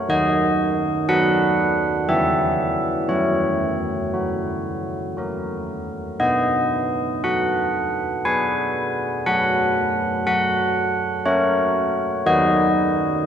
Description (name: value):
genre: classical, tune for church bells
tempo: 59 BPM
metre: 3/4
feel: straight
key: B major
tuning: A4 = 440 Hz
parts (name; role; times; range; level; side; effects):
- carillon bells; solo; 0.0-13.2 s; D#3 to G#5; -18 LUFS; equal; none
room: wet church reverb, RT60 3.2 s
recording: none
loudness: -18 LUFS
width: side -8 dB against mid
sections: 0.0-13.3 A section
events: none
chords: 0.1 B/D#; 2.1 C#m7/E; 3.1 F#; 6.2 B; 9.3 F#; 12.3 B/D#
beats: | 0.10 1.09 2.09 | 3.10 4.13 5.16 | 6.20 7.22 8.24 | 9.26 10.26 11.25 | 12.25